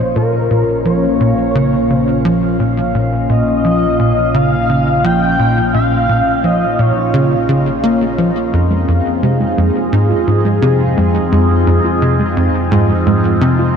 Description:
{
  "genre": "ambient, sequencer-driven space music",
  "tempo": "86 BPM",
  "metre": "4/4",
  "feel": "straight",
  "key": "Bb minor",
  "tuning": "A4 = 438 Hz",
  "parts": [
    { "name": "expressive portamento lead", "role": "melody", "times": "0.0-7.5 s", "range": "Bb4 to G5", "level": "-18 LUFS", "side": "left 1 dB", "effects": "ensemble chorus, shimmer reverb, tape echo" },
    { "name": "phased analog pad", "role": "sustained chords", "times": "0.0-13.8 s", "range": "Bb2 to F5", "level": "-16 LUFS", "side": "equal", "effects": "phaser, chorus, shimmer reverb" },
    { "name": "tight sequencer bass", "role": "riff", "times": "0.0-13.7 s", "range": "F2 to Bb3", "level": "-15 LUFS", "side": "equal", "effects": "lush chorus, tape echo" },
    { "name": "analog drone", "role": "bass", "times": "0.0-13.8 s", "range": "Bb1 to F2", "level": "-24 LUFS", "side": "equal", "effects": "chorus" },
    { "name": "pulsing gated texture", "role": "texture", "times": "0.6-13.8 s", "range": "Eb4 to Eb5", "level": "-29 LUFS", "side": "right 1 dB", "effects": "chorus, built-in reverb, shimmer reverb" },
    { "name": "warbly dusty pluck", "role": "arpeggios", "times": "8.7-13.8 s", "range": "Ab3 to F4", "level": "-19 LUFS", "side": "right 2 dB", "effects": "chorus, auto-pan, shimmer reverb, tape echo" }
  ],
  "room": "wet huge ambient reverb, RT60 6.9 s",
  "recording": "dark, warm production",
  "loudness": "-11 LUFS",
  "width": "side -7 dB against mid",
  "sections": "0.0-13.8 A section",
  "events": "fade-in on synth drone 0.0-13.8; fade-in on synth texture 0.0-13.8",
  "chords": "0.0 Bbm; 8.5 Fm"
}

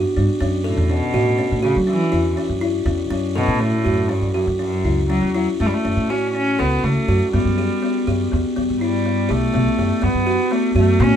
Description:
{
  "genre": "contemporary instrumental, chamber music in an uneven meter",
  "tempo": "244 BPM (eighths)",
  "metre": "11/8",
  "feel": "straight",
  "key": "F# phrygian",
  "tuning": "A4 = 445 Hz",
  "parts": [
    { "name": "rich cello", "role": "melody", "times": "0.0-11.2 s", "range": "F#2 to C#4", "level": "-22 LUFS", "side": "equal", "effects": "none" },
    { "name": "buzzing kalimba", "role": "arpeggios", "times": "0.0-11.2 s", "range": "B3 to A4", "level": "-20 LUFS", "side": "left 1 dB", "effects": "none" },
    { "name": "upright bass", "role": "bass", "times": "0.0-11.1 s", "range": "B1 to F#3", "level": "-21 LUFS", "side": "equal", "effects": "none" }
  ],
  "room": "light reverb",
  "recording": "dark, warm production",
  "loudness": "-17 LUFS",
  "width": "side -9 dB against mid",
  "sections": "0.0-5.9 A section; 5.9-11.2 B section",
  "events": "none",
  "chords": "0.4 F#m7; 5.9 F#m; 7.3 G/F#; 8.6 Em/F# (rootless); 10.0 B5/F#"
}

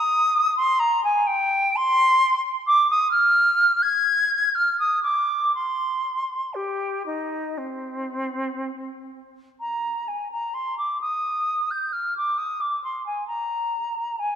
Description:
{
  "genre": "classical, baroque-style fantasia for unaccompanied flute",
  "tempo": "57-68 BPM",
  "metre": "4/4",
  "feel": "rubato",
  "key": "C minor, Eb major from 9.6 s",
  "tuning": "A4 = 440 Hz",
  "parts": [
    { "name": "silver concert flute", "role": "solo", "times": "0.0-14.4 s", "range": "C4 to Ab6", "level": "-20 LUFS", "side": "equal", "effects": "none" }
  ],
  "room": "wet concert hall reverb, RT60 2.4 s",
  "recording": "minimal, uncompressed stereo recording",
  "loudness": "-20 LUFS",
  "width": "side -8 dB against mid",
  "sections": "0.0-9.6 A section; 9.6-14.4 A section",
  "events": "none",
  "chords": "none"
}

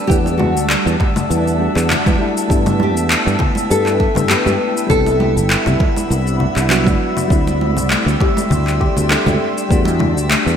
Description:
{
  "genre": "sunset chillout",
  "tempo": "100 BPM",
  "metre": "4/4",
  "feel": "swing 54% on 16ths",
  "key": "C lydian",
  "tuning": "A4 = 440 Hz",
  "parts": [
    { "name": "nylon-string guitar", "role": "melody", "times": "0.0-6.1 s", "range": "F#4 to B4", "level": "-21 LUFS", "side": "left 1 dB", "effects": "lush chorus, digital delay" },
    { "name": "soft electric-piano-like synth keys", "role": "accompaniment", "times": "0.0-10.6 s", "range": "F#3 to F#5", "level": "-22 LUFS", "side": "moving between left 4 dB and right 3 dB", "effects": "chorus, auto-pan, low-pass filter, digital delay" },
    { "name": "ethereal airy pad", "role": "sustained chords", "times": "0.0-10.6 s", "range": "G3 to C6", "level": "-24 LUFS", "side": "left 1 dB", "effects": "ensemble chorus, built-in reverb" },
    { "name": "drifting glass-harmonics texture", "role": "texture", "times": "0.0-10.6 s", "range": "E5 to E6", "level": "-26 LUFS", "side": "right 1 dB", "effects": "chorus, built-in reverb" },
    { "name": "sustaining fretless electric bass", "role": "bass", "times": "0.1-10.5 s", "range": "G1 to G2", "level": "-17 LUFS", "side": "equal", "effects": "tube saturation, ensemble chorus" },
    { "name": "electronic kick drum", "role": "drums", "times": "0.1-9.8 s", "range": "none", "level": "-17 LUFS", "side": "equal", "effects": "overdrive, studio ambience" },
    { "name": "electronic shaker, congas and handclaps", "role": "drums", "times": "0.1-10.6 s", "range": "none", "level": "-20 LUFS", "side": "left 2 dB", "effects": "overdrive, studio ambience, gated reverb" },
    { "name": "congas", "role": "percussion", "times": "0.3-10.1 s", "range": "none", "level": "-25 LUFS", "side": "right 3 dB", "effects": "none" },
    { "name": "soft round pluck", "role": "arpeggios", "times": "7.9-10.5 s", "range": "A3 to A4", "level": "-25 LUFS", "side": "left 4 dB", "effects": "wide subtle chorus, digital delay" }
  ],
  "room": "moderate lush hall reverb, RT60 2.1 s",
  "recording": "bright 1980s-style digital production",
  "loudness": "-13 LUFS",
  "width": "side -8 dB against mid",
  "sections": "0.0-10.6 A section",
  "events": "none",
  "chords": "0.0 Em11; 2.5 G69; 4.9 Cmaj9#11; 7.3 D7sus4; 9.4 Em11"
}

